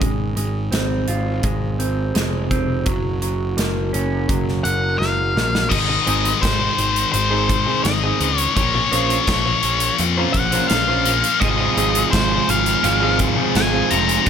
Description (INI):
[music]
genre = quiet-loud alternative rock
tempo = 84 BPM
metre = 4/4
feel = straight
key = unclear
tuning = A4 = 439 Hz
[part]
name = electric guitar through a small old amp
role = arpeggios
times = 0.0-14.0 s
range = Gb3 to C5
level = -25 LUFS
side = right 4 dB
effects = slapback echo
[part]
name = fuzz picked electric bass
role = bass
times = 0.0-14.3 s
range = F1 to F2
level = -23 LUFS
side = equal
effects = overdrive
[part]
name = big rock drum kit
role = drums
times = 0.0-14.3 s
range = crash cymbal, hi-hat, kick drum, snare drum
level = -23 LUFS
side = equal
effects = none
[part]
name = octave-fuzz lead guitar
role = melody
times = 4.6-14.3 s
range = C5 to Bb5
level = -21 LUFS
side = left 1 dB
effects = distortion, slapback echo
[part]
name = scooped high-gain guitar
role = riff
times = 5.7-14.3 s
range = F2 to Bb3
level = -20 LUFS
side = left 14 dB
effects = distortion
[part]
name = overdriven electric guitar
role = riff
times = 11.4-14.3 s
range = Gb3 to Ab4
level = -22 LUFS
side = right 14 dB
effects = none
[sound]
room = light reverb, small room ambience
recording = none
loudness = -16 LUFS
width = side -8 dB against mid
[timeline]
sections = 0.0-5.7 A section; 5.7-14.3 B section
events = drum fill 5.0-5.7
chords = 0.0 Fm/Ab; 2.9 Gb; 5.7 Ab; 8.6 Bbmadd9; 11.4 Fm/Ab